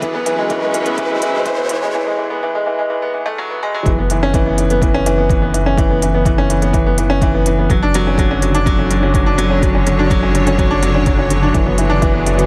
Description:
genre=piano and strings electronica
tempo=125 BPM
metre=4/4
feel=straight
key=unclear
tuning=A4 = 439 Hz
part: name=rich studio string section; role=sustained chords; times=0.0-2.0, 7.7-12.5 s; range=D3 to C#5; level=-24 LUFS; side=equal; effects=sidechain pumping
part: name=bright upright piano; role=riff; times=0.0-12.5 s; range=E3 to D4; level=-18 LUFS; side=equal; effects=tape echo
part: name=electronic hi-hat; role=drums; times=0.0-12.5 s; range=none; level=-29 LUFS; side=equal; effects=overdrive
part: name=electronic kick drum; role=drums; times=0.0-12.1 s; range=none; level=-20 LUFS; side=equal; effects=overdrive
part: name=riser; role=sound effects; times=0.0-1.9 s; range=none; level=-29 LUFS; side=equal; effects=none
part: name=round analog bass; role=bass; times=3.9-12.5 s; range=F#1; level=-20 LUFS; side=equal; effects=tube saturation, sidechain pumping
room=light reverb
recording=high-pass filter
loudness=-15 LUFS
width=mono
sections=0.0-3.9 A section; 3.9-12.5 B section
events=build-up 0.0-3.9; riser 0.0-1.9; break 1.9-3.9; drop 3.9-12.5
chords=0.0 F#m11; 3.9 C#m7/F#; 7.7 Dmaj7/F#; 11.5 E7/F#

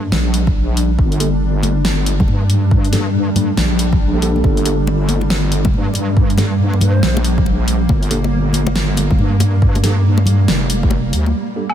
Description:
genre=deep dubstep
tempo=139 BPM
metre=4/4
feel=swing 62% on 16ths, half-time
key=G minor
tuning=A4 = 442 Hz
part: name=granular cloud pad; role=sustained chords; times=0.0-11.7 s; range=G3 to D4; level=-21 LUFS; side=right 1 dB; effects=built-in reverb, lush chorus
part: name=wobble bass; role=bass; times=0.0-11.3 s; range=F1 to G2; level=-16 LUFS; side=equal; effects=chorus
part: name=deep house drum kit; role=drums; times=0.1-11.7 s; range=hi-hat, snare drum, woodblock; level=-23 LUFS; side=equal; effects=none
part: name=electronic kick drum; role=drums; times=0.5-10.9 s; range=none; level=-16 LUFS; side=equal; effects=none
part: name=mellow tine electric piano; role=stabs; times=1.2-11.6 s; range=Bb3 to A4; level=-26 LUFS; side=right 3 dB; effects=medium stereo tremolo, low-pass filter, dub echo
part: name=congas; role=percussion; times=1.6-11.3 s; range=none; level=-25 LUFS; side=left 3 dB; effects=none
part: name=breathy low ney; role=melody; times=6.8-7.2 s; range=C5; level=-30 LUFS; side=equal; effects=dub echo
room=light reverb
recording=none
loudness=-13 LUFS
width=side -10 dB against mid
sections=0.0-11.3 A section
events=none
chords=0.0 Gm

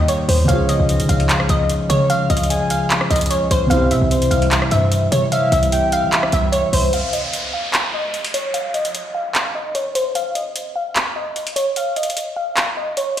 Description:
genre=hip hop, trap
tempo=149 BPM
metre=4/4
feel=half-time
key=unclear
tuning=A4 = 436 Hz
part: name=glassy wavetable pluck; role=melody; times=0.0-13.2 s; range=C5 to F5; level=-21 LUFS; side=equal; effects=chorus, low-pass filter, digital delay
part: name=soft octave-layered synth lead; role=second line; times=0.0-6.5 s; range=C5 to Ab5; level=-25 LUFS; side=left 1 dB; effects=chorus, phaser, digital delay
part: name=felt-muted upright piano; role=accompaniment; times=0.0-7.0 s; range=C3 to Bb4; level=-23 LUFS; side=right 1 dB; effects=low-pass filter
part: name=chamber organ, flutes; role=sustained chords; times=0.0-6.9 s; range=C3 to G4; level=-24 LUFS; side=equal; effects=none
part: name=short 808-style bass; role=bass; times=0.0-6.9 s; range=C2 to G3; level=-19 LUFS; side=equal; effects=none
part: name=booming analog drum machine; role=drums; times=0.1-13.2 s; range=handclaps, hi-hat, rim click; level=-22 LUFS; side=equal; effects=none
part: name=downlifter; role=sound effects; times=6.9-10.2 s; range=none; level=-27 LUFS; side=equal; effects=none
room=light reverb, digital ambience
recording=played on a big sound system in a bare room, large studio reverb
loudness=-16 LUFS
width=side -10 dB against mid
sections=0.0-6.9 A section; 6.9-13.2 B section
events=break 6.9-13.2; filter sweep 6.9-13.2; kick muted 11.8-13.2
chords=0.5 Db; 3.7 C; 6.9 N.C.

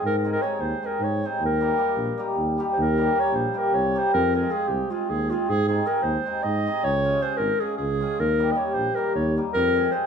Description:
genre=balkan folk, Balkan wedding band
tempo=309 BPM (eighths)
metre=7/8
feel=straight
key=Eb mixolydian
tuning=A4 = 442 Hz
part: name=mellow clarinet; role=melody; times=0.0-10.1 s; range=F4 to Eb5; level=-25 LUFS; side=equal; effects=none
part: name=cimbalom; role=accompaniment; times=0.0-10.1 s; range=G3 to Ab4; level=-26 LUFS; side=equal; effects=none
part: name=mellow tuba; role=bass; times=0.0-9.9 s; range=Ab1 to Ab2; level=-27 LUFS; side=equal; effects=none
room=moderate large studio reverb, RT60 0.9 s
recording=band playing live in one room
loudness=-21 LUFS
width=side -6 dB against mid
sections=0.0-2.8 A section; 2.8-10.1 A section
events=none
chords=0.0 Ab; 1.4 Eb; 4.1 Fm; 5.5 Ab; 6.8 Db; 8.2 Eb; 9.6 Fm

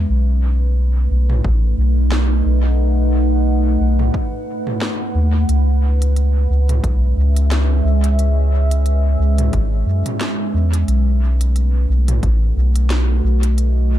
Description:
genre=ambient dub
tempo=89 BPM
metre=4/4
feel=swing 56% on 16ths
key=unclear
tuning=A4 = 440 Hz
part: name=deep dark ambient pad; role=sustained chords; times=0.0-14.0 s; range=G#3 to F#5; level=-22 LUFS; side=right 1 dB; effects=chorus, built-in reverb
part: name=soft dub sub bass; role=bass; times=0.0-14.0 s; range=G#1 to F#2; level=-14 LUFS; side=equal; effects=none
part: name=organic electronic drum kit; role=drums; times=1.3-13.7 s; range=hi-hat, snare drum, toms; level=-27 LUFS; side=equal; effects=dub echo
part: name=electronic kick drum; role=drums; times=1.4-12.4 s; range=none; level=-22 LUFS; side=equal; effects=none
room=little or no reverb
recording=echo-heavy mix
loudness=-14 LUFS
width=side -12 dB against mid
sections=0.0-14.0 A section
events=none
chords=0.1 B7; 5.5 C#m7; 10.9 B7

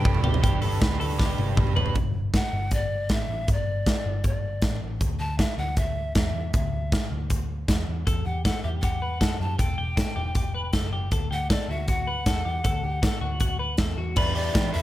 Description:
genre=jangly indie pop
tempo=157 BPM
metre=4/4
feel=straight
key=G major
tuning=A4 = 440 Hz
part: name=breathy bright pan flute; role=melody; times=0.0-14.8 s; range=D5 to A5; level=-32 LUFS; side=left 2 dB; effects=slapback echo
part: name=biting overdriven guitar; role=accompaniment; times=0.0-2.0, 14.2-14.8 s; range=D3 to B4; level=-31 LUFS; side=right 7 dB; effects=none
part: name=twelve-string electric guitar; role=arpeggios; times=0.0-2.0, 8.1-14.8 s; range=F#4 to B4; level=-33 LUFS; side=left 3 dB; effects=slapback echo
part: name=vintage muted picked electric bass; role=bass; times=0.0-14.8 s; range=E1 to E3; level=-29 LUFS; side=equal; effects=none
part: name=big rock drum kit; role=drums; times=0.1-14.8 s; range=crash cymbal, hi-hat, kick drum, snare drum, toms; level=-25 LUFS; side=equal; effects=none
room=light reverb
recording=none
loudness=-23 LUFS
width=side -14 dB against mid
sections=0.4-2.0 A section; 2.0-14.2 B section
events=drum fill 0.0-0.4, 1.2-2.0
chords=0.4 G; 2.0 Gsus2; 5.0 Dsus2; 8.1 Emadd9; 11.1 Dadd9; 14.2 Em7

